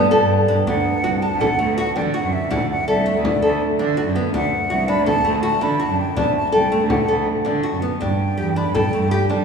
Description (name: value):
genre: contemporary instrumental, chamber music in an uneven meter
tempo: 163 BPM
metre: 5/4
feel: straight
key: D mixolydian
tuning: A4 = 439 Hz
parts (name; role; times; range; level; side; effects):
- breathy concert flute; melody; 0.0-9.4 s; D5 to B5; -23 LUFS; equal; none
- nylon-string guitar; arpeggios; 0.0-9.4 s; A3 to A4; -20 LUFS; equal; none
- rich cello; bass; 0.0-9.4 s; C2 to G3; -22 LUFS; right 3 dB; none
- large celesta; texture; 0.0-8.3 s; B4 to A5; -29 LUFS; left 4 dB; none
- frame drum; percussion; 0.1-9.4 s; none; -28 LUFS; left 1 dB; none
room: wet cathedral reverb, RT60 5.0 s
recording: recorded in a church or concert hall, small room ambience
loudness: -17 LUFS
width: side -6 dB against mid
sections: 0.7-9.4 A section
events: none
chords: 0.0 Gsus2; 0.7 D; 8.0 Gsus2